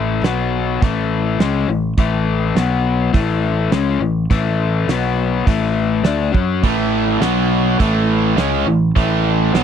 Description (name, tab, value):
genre	classic rock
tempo	103 BPM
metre	4/4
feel	straight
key	A major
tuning	A4 = 439 Hz
part	crunchy overdriven guitar	riff	0.0-9.6 s	A2 to F#4	-18 LUFS	left 8 dB	none
part	picked electric bass	bass	0.0-9.6 s	A1 to F#2	-20 LUFS	right 2 dB	none
part	damped 70s drum kit	drums	0.2-9.6 s	hi-hat, kick drum, snare drum	-16 LUFS	right 2 dB	none
part	cranked stack guitar	riff	6.6-9.6 s	A2 to C#4	-18 LUFS	right 20 dB	overdrive
room	little or no reverb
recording	dry, close 1970s-style studio recording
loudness	-15 LUFS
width	side -8 dB against mid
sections	0.0-9.6 A section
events	none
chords	0.2 B5; 0.8 A; 2.6 B5; 3.1 A; 4.9 B5; 5.5 A; 7.2 B5; 7.8 A